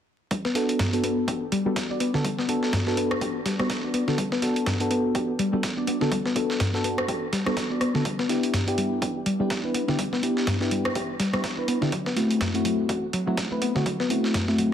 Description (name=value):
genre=deep house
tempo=124 BPM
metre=4/4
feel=swing 58% on 16ths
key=G major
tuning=A4 = 440 Hz
part: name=soft round pluck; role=arpeggios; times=0.3-14.7 s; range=F#2 to G4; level=-28 LUFS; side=left 2 dB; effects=chorus, sidechain pumping, ping-pong delay
part: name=dusty soul sampler-style drum kit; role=drums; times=0.3-14.7 s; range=hi-hat, snare drum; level=-31 LUFS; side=right 2 dB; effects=high-pass filter on hats, high-pass filter on snare
part: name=electronic kick drum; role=drums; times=0.3-14.5 s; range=none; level=-34 LUFS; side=equal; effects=high-pass filter on kick, high-pass filter on room
part: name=mellow FM electric piano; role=stabs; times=0.5-14.7 s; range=A3 to D5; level=-26 LUFS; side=equal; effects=chorus, phaser, cassette tape, sidechain pumping, low-pass filter, dub echo
part: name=electronic rim click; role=drums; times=3.1-3.7, 7.0-7.9, 10.9-11.4 s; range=none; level=-31 LUFS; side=equal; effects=soft clipping on snare
room=moderate plate reverb, RT60 2.1 s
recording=dense, heavily limited modern master, vinyl crackle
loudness=-23 LUFS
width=side -9 dB against mid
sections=0.3-14.7 A section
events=filter sweep on FM electric piano 0.3-14.7; filter sweep on synth arpeggio sound 0.3-14.7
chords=0.3 Gmaj9; 8.1 G6; 11.9 D9 (rootless)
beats=| 0.31 0.79 1.28 1.76 | 2.25 2.73 3.21 3.70 | 4.18 4.67 5.15 5.63 | 6.12 6.60 7.08 7.57 | 8.05 8.54 9.02 9.50 | 9.99 10.47 10.96 11.44 | 11.92 12.41 12.89 13.38 | 13.86 14.34